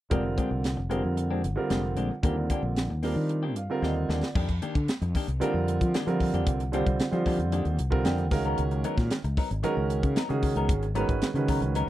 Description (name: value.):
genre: electric jazz fusion.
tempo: 114 BPM.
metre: 4/4.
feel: straight.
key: F dorian.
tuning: A4 = 440 Hz.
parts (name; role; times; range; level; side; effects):
warm grand piano; accompaniment; 0.1-11.9 s; D3 to G5; -29 LUFS; right 4 dB; none.
clean electric guitar; stabs; 0.1-11.9 s; Eb3 to Bb4; -34 LUFS; left 5 dB; wide subtle chorus.
fretless electric bass; bass; 0.1-11.9 s; F1 to F3; -28 LUFS; left 1 dB; none.
crisp fusion drum kit; drums; 0.1-11.9 s; crash cymbal, hi-hat, kick drum, snare drum; -29 LUFS; equal; none.
room: light reverb.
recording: dry, close 1970s-style studio recording.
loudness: -25 LUFS.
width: side -14 dB against mid.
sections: 0.1-4.4 A section; 4.4-11.9 B section.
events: grand piano fill 3.3-4.4, 7.8-8.6; drum fill 3.8-4.4.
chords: 0.1 Fm69; 2.2 Ebmaj7; 4.4 F13sus4; 8.3 Db13sus4.